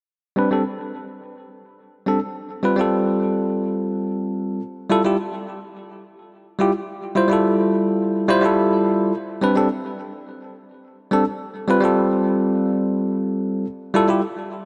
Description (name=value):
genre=chillout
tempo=106 BPM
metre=4/4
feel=straight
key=A minor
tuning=A4 = 440 Hz
part: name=bell-like tine electric piano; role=accompaniment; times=0.4-14.2 s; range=G3 to C5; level=-21 LUFS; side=equal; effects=low-pass filter, tape echo
room=moderate lush hall reverb, RT60 2.8 s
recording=none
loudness=-21 LUFS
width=mono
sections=0.1-9.1 A section; 9.1-14.7 B section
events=none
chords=0.1 Am11; 2.4 G9sus4; 4.6 Fmaj9; 9.1 Am11; 11.4 G9sus4; 13.7 Fmaj9